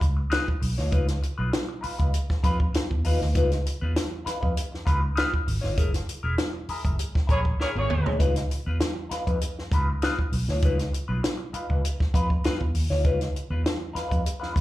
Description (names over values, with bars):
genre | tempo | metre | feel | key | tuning
funk | 99 BPM | 4/4 | straight | Db mixolydian | A4 = 440 Hz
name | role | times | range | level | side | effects
clean electric guitar | accompaniment | 0.0-14.6 s | Eb4 to Db5 | -30 LUFS | left 2 dB | wah, phaser, plate reverb, slapback echo
vintage muted fingered electric bass | bass | 0.0-14.6 s | Fb1 to F2 | -26 LUFS | equal | none
compact cocktail drum kit | drums | 0.0-14.6 s | hi-hat, kick drum, snare drum, toms | -26 LUFS | equal | none
clear horn section | second line | 7.3-8.1 s | Bb3 to Db5 | -29 LUFS | equal | plate reverb, slapback echo
room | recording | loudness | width
light reverb | live gig heard through the venue's PA, club reverb | -23 LUFS | side -16 dB against mid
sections
0.0-14.6 A section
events
band accent 5.8-8.2; drum fill 7.6-8.2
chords
0.0 Db9; 5.8 Gb9; 8.2 Db9